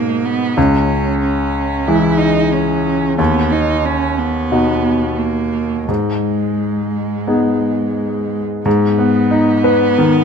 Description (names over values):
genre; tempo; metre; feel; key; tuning
neoclassical piano and strings; 89 BPM; 4/4; uneven beats, rubato; G# minor; A4 = 440 Hz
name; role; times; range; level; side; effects
rich cello; second line; 0.0-10.2 s; G#3 to E4; -19 LUFS; right 6 dB; none
clear baby grand piano; accompaniment; 0.0-10.2 s; C#2 to B4; -15 LUFS; left 2 dB; none
room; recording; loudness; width
light reverb; close, detailed microphones; -13 LUFS; side -6 dB against mid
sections
0.0-8.7 A section; 8.7-10.2 B section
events
none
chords
0.0 G#madd9; 0.6 C#m; 3.2 B/D#; 5.9 G#m